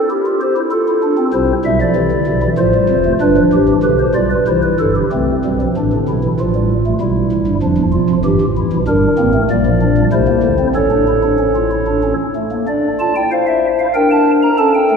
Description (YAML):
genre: classical, baroque-style 4-part fugue for pipe organ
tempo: 95 BPM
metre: 3/4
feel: straight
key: D minor from 8.9 s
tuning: A4 = 440 Hz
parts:
  - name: pipe organ, stopped flute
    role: solo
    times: 0.0-15.0 s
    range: E1 to Bb5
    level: -12 LUFS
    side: equal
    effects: none
room: wet cathedral reverb, RT60 5.1 s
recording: minimal, uncompressed stereo recording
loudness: -12 LUFS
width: side -6 dB against mid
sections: 0.0-5.1 A section; 5.1-12.7 B section; 12.7-15.0 C section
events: none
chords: 0.0 C; 0.7 F; 1.3 C; 2.6 F/A; 3.2 G; 4.5 C; 6.4 F/A; 7.0 Bdim; 8.3 Em/G; 8.9 Em7b5/G; 10.8 A; 12.7 Dm; 13.9 Gm/D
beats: 0.09 0.71 | 1.33 1.96 2.58 | 3.21 3.84 4.47 | 5.12 5.75 6.38 | 7.01 7.63 8.26 | 8.88 9.50 10.13 | 10.76 11.40 12.04 | 12.69 13.32 13.95 | 14.59